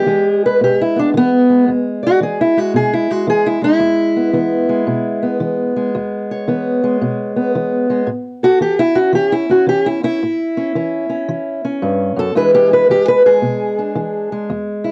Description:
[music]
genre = acoustic country blues, solo or duo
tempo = 112 BPM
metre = 4/4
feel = swing 66% on 8ths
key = E mixolydian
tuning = A4 = 441 Hz
[part]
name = fingerpicked steel-string acoustic guitar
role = solo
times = 0.0-14.9 s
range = E2 to D5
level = -16 LUFS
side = equal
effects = cassette tape
[sound]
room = light reverb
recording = home recording on cassette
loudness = -16 LUFS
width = mono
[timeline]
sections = 0.0-14.9 A section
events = steel-string acoustic guitar solo 0.0-14.9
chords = 0.0 E7; 8.1 A7; 12.4 E7

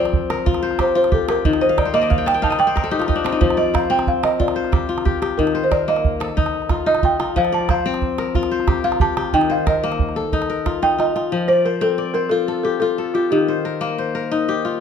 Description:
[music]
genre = west african traditional, West African string and xylophone music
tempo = 121 BPM (dotted quarters)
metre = 12/8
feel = straight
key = F mixolydian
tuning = A4 = 441 Hz
[part]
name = balafon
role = melody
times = 0.0-13.7 s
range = F4 to A5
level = -19 LUFS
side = right 2 dB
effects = none
[part]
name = kora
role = arpeggios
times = 0.0-14.8 s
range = Eb3 to A5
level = -20 LUFS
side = left 5 dB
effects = none
[part]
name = calabash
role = percussion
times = 0.1-11.3 s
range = none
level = -22 LUFS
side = right 4 dB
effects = none
[sound]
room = moderate recital hall reverb, RT60 1.7 s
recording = dark, warm production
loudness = -16 LUFS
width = side -7 dB against mid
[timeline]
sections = 0.0-11.3 A section; 11.3-14.8 B section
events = balafon solo 0.0-11.3; kora fill 1.6-3.4; drum fill 10.8-11.3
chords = 0.0 F; 1.4 Eb; 3.4 F5; 5.4 Eb; 7.4 F; 9.3 Eb; 11.3 F; 13.3 Eb

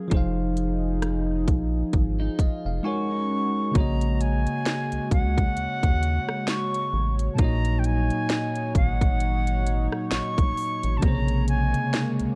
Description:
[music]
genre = contemporary R&B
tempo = 66 BPM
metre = 4/4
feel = swing 58% on 16ths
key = unclear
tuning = A4 = 440 Hz
[part]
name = bell-like tine electric piano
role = accompaniment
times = 0.0-12.4 s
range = Bb2 to Ab5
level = -30 LUFS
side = equal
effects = none
[part]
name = warm analog pad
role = sustained chords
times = 0.0-12.4 s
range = F3 to Db5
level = -36 LUFS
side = equal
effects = chorus, sidechain pumping
[part]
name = rubbery square bass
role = bass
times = 0.1-12.3 s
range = F1 to Eb2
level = -28 LUFS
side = equal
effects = none
[part]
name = trap drum kit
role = drums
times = 0.1-12.4 s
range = hi-hat, kick drum, rim click, snare drum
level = -26 LUFS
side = equal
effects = none
[part]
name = clean electric guitar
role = arpeggios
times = 2.2-3.7 s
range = Eb4 to Gb4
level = -40 LUFS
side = equal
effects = lush chorus
[part]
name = reedy silver concert flute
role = melody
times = 2.9-12.1 s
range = Gb5 to Db6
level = -32 LUFS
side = equal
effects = none
[sound]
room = light reverb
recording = dark, warm production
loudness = -24 LUFS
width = mono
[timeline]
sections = 0.0-3.8 A section; 3.8-12.4 B section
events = tine electric piano fill 1.9-3.8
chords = 0.1 Fm7; 2.8 Ab9sus4; 3.8 Ab9sus4/Bb; 7.4 Ebm7; 11.0 Bbm7

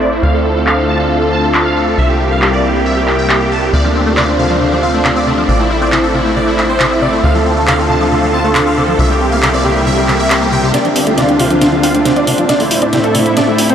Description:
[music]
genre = uplifting trance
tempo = 137 BPM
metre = 4/4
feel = straight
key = D minor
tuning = A4 = 439 Hz
[part]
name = supersaw chords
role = melody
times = 0.0-13.7 s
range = A3 to A5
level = -16 LUFS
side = equal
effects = phaser, cassette tape, low-pass filter, analog delay
[part]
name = lush unison pad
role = sustained chords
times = 0.0-13.7 s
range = D2 to F4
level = -15 LUFS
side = equal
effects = chorus
[part]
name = tight sequencer bass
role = bass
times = 0.0-10.7 s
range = A1 to D2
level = -18 LUFS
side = equal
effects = tube saturation
[part]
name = techno drum kit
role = drums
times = 0.7-13.7 s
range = handclaps, hi-hat, snare drum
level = -18 LUFS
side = equal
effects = overdrive, low-pass filter on hats, low-pass filter on snare, low-pass filter on cymbals
[part]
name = liquid acid bass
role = arpeggios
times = 3.7-13.7 s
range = C3 to G4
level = -18 LUFS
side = left 1 dB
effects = ensemble chorus, analog delay
[part]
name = wide unison pluck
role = second line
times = 10.7-13.7 s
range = D4 to F5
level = -20 LUFS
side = equal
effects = none
[sound]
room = wet huge ambient reverb, RT60 8.4 s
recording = dreamy mix soaked in reverb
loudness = -10 LUFS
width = side -8 dB against mid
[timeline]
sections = 0.0-10.7 A section; 10.7-13.7 B section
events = filter sweep on analog synth pad 0.0-10.7; build-up 10.7-13.7; drum fill 10.7-13.7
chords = 0.2 Dm7; 2.0 C7; 3.7 Dm7; 5.5 Am; 7.2 Dm7; 9.0 C7; 10.7 Dm7; 12.5 Am

